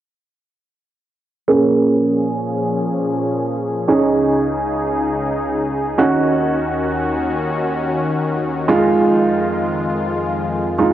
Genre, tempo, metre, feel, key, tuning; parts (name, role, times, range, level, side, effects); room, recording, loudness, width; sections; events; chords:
pop; free time; Bb minor; A4 = 439 Hz
clear concert grand piano; accompaniment; 1.5-10.9 s; Ab3 to Ab4; -17 LUFS; right 2 dB; low-pass filter, cassette tape
soft supersaw; sustained chords; 1.5-10.9 s; Db2 to Ab4; -20 LUFS; left 2 dB; low-pass filter, cassette tape
wet lush hall reverb, RT60 2.3 s; home recording on cassette; -16 LUFS; side -12 dB against mid
1.5-10.9 A section
filter sweep 1.5-10.9
1.5 Bbm7; 3.9 Dbsus2; 6.0 Ebm7; 8.7 Fm7